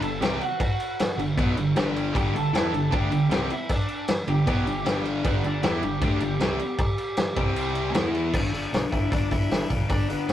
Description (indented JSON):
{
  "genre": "punk rock",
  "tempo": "155 BPM",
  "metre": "4/4",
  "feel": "straight",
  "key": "G major",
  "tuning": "A4 = 440 Hz",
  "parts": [
    { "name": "overdriven electric guitar", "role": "melody", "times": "0.0-10.3 s", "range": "B3 to A5", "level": "-31 LUFS", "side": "right 1 dB", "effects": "none" },
    { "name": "distorted electric guitar", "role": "riff", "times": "0.0-10.3 s", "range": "G2 to E4", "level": "-28 LUFS", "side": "left 1 dB", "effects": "distortion" },
    { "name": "distorted electric guitar", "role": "riff", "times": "0.0-8.3 s", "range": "G2 to E4", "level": "-30 LUFS", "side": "right 3 dB", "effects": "overdrive" },
    { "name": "thick fuzz guitar", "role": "riff", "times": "0.0-8.3 s", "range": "G2 to E4", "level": "-33 LUFS", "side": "equal", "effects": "distortion" },
    { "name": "picked electric bass", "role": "bass", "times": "0.0-10.3 s", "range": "G1 to E2", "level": "-34 LUFS", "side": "equal", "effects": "none" },
    { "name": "loose indie drum kit", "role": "drums", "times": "0.0-10.3 s", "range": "crash cymbal, hi-hat, kick drum, snare drum", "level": "-26 LUFS", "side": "equal", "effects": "none" }
  ],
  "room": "light reverb",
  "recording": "rough rehearsal-room recording",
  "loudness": "-22 LUFS",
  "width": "side -11 dB against mid",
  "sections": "0.0-8.3 A section; 8.3-10.3 B section",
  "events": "none",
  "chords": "0.0 G; 7.4 C5; 8.0 E5; 8.3 G"
}